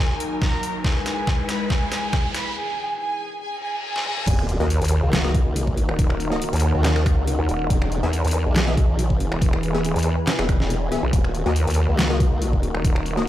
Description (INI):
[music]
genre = heavy wobble dubstep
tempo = 140 BPM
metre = 4/4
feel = swing 53% on 16ths, half-time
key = Eb phrygian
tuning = A4 = 436 Hz
[part]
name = warm studio violin section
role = melody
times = 0.0-4.3 s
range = Ab4 to B5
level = -28 LUFS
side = right 2 dB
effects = dub echo
[part]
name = muted studio string section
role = sustained chords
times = 0.0-13.3 s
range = Eb3 to B4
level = -30 LUFS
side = equal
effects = sidechain pumping, low-pass filter
[part]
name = riser, reverse cymbal and sub drop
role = sound effects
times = 0.0-6.0 s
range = none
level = -32 LUFS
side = left 1 dB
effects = none
[part]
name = deep dark ambient pad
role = texture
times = 0.0-13.3 s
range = Eb4 to G#5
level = -32 LUFS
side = left 2 dB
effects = chorus, built-in reverb, sidechain pumping
[part]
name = dubstep drum kit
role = drums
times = 0.2-13.2 s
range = crash cymbal, finger snaps, handclaps, hi-hat, snare drum, toms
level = -27 LUFS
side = equal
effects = overdrive, high-pass filter on hats, studio reverb, high-pass filter on snare, high-pass filter on toms, high-pass filter on cymbals
[part]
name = electronic kick drum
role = drums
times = 0.4-12.9 s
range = none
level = -20 LUFS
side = equal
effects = overdrive, studio reverb
[part]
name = formant-sweep wobble bass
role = bass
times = 4.3-12.7 s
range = Eb1 to Eb2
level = -22 LUFS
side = equal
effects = chorus, overdrive
[part]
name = supersaw stab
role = stabs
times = 4.6-13.2 s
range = Bb3 to E5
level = -29 LUFS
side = left 3 dB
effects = dub echo
[part]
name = vowel-sweep wobble bass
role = bass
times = 4.6-13.3 s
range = Eb1 to E2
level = -21 LUFS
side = equal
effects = chorus, overdrive
[sound]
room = little or no reverb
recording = played on a big sound system in a bare room, large studio reverb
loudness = -19 LUFS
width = side -13 dB against mid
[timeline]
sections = 0.0-4.3 A section; 4.3-13.3 B section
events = build-up 0.0-4.3; drum fill 0.0-2.6, 4.0-4.3; riser 0.0-2.6; break 2.6-4.3; reverse cymbal 3.6-4.3; drop 4.3-13.3; impact 4.3-6.0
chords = 0.0 Ebm; 0.8 E; 4.3 Ebm; 7.7 E; 11.1 Ebm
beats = 0.42 | 0.84 1.27 1.70 2.13 | 2.56 2.99 3.42 3.85 | 4.27 4.70 5.13 5.56 | 5.99 6.42 6.84 7.27 | 7.70 8.13 8.56 8.99 | 9.42 9.85 10.27 10.70 | 11.13 11.56 11.99 12.42 | 12.85 13.27